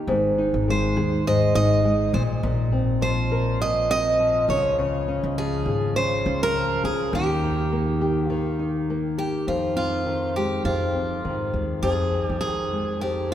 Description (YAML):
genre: acoustic pop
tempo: 102 BPM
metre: 4/4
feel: swing 55% on 16ths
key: unclear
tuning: A4 = 440 Hz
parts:
  - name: nylon-string guitar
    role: accompaniment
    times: 0.0-13.3 s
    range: F2 to Bb4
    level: -24 LUFS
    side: left 1 dB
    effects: none
  - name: upright bass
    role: bass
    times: 0.1-13.3 s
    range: Ab1 to Ab2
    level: -27 LUFS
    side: left 1 dB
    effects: none
  - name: picked steel-string acoustic guitar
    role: melody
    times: 0.7-13.3 s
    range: F4 to Eb5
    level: -25 LUFS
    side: right 2 dB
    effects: none
room: wet cathedral reverb, RT60 4.6 s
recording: recorded in a church or concert hall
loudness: -21 LUFS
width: side -11 dB against mid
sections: 0.0-9.5 A section; 9.5-13.3 B section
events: none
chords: 0.1 Ab; 2.1 Bbsus2; 4.5 Db; 7.1 Eb; 9.5 Fm7